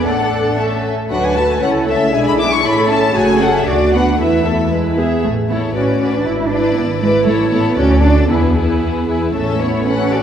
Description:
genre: quick classical-period movement for string orchestra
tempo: 116 BPM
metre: 2/4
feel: straight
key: A major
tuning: A4 = 441 Hz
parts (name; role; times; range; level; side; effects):
- clear studio violin section; melody; 0.0-10.2 s; B4 to D6; -22 LUFS; left 4 dB; none
- dark studio violin section; second line; 0.0-10.2 s; D4 to A5; -20 LUFS; left 2 dB; none
- rich studio viola section; accompaniment; 0.0-10.2 s; F#3 to A4; -18 LUFS; right 1 dB; none
- dark studio cello section; bass; 0.0-10.2 s; G#3 to B4; -19 LUFS; right 1 dB; none
- rich studio double bass section; bass; 0.1-10.2 s; F#1 to E2; -19 LUFS; right 1 dB; none
room: wet concert hall reverb, RT60 1.9 s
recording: heard from further back in the room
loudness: -13 LUFS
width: side -9 dB against mid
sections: 0.0-5.2 A section; 5.2-10.2 B section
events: none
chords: 0.1 D/A; 0.6 A; 1.1 D; 1.6 A/C#; 2.1 E7/B; 2.6 A; 3.1 F#m; 3.7 Bm/D; 4.2 Esus4; 4.7 E; 5.2 A; 5.8 Bm7/A; 6.3 E7/G#; 7.3 A; 7.8 D; 8.3 E; 9.3 A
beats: | 0.06 0.58 | 1.10 1.62 | 2.14 2.65 | 3.15 3.67 | 4.19 4.72 | 5.24 5.75 | 6.26 6.76 | 7.27 7.78 | 8.30 8.83 | 9.35 9.87

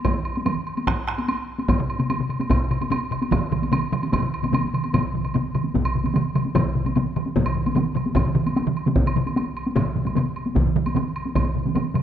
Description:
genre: japanese traditional, taiko drum ensemble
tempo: 149 BPM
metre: 4/4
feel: straight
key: none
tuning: none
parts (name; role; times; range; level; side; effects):
- taiko ensemble; percussion; 0.0-11.4 s; none; -26 LUFS; equal; none
- woodblock; percussion; 0.0-12.0 s; none; -31 LUFS; right 3 dB; none
- taiko ensemble; percussion; 0.1-11.8 s; none; -27 LUFS; left 2 dB; none
- taiko ensemble; percussion; 0.1-12.0 s; none; -27 LUFS; right 6 dB; none
- taiko ensemble; percussion; 1.8-12.0 s; none; -26 LUFS; left 3 dB; none
room: moderate scoring stage reverb, RT60 1.9 s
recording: close, detailed microphones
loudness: -20 LUFS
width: side -9 dB against mid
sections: 0.0-4.9 A section; 4.9-12.0 B section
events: speeding up 0.0-12.0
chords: none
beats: | 0.05 0.46 0.87 1.28 | 1.69 2.10 2.51 2.91 | 3.32 3.73 4.13 4.54 | 4.95 5.35 5.75 6.16 | 6.56 6.96 7.37 7.77 | 8.17 8.57 8.97 9.37 | 9.77 10.17 10.56 10.96 | 11.36 11.76

